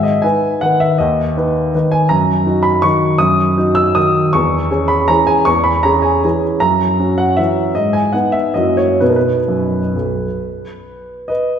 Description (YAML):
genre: classical, piano waltz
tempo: 125-170 BPM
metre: 3/4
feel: rubato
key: B major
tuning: A4 = 440 Hz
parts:
  - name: warm upright piano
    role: solo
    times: 0.0-11.6 s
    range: B1 to E6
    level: -12 LUFS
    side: equal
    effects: none
room: wet concert hall reverb, RT60 2.1 s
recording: recorded in a church or concert hall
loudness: -12 LUFS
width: side -8 dB against mid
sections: 0.0-11.6 A section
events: none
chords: 0.0 G#m; 2.1 D#m/F#; 4.4 C#m/E; 6.6 F#7; 7.8 G#m; 8.6 F#7; 9.0 B